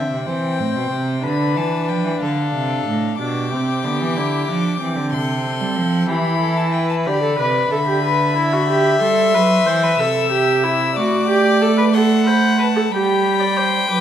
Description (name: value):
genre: classical, baroque-style fugue for string quartet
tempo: 62 BPM (dotted quarters)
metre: 12/8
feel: straight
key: unclear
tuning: A4 = 440 Hz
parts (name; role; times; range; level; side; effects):
- warm violin; melody; 0.0-14.0 s; F5 to E6; -24 LUFS; left 8 dB; none
- rich violin; second line; 0.0-14.0 s; G4 to G5; -22 LUFS; left 3 dB; none
- rich viola; accompaniment; 0.0-14.0 s; B3 to D5; -20 LUFS; right 1 dB; none
- rich cello; bass; 0.0-14.0 s; A2 to A3; -20 LUFS; right 3 dB; none
room: wet recital hall reverb, RT60 1.6 s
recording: none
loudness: -15 LUFS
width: side -10 dB against mid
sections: 0.0-14.0 A section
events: none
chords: 0.0 Dm7; 3.2 G7/B; 5.1 C; 7.1 G; 9.0 Am7; 11.0 D7/A; 12.9 G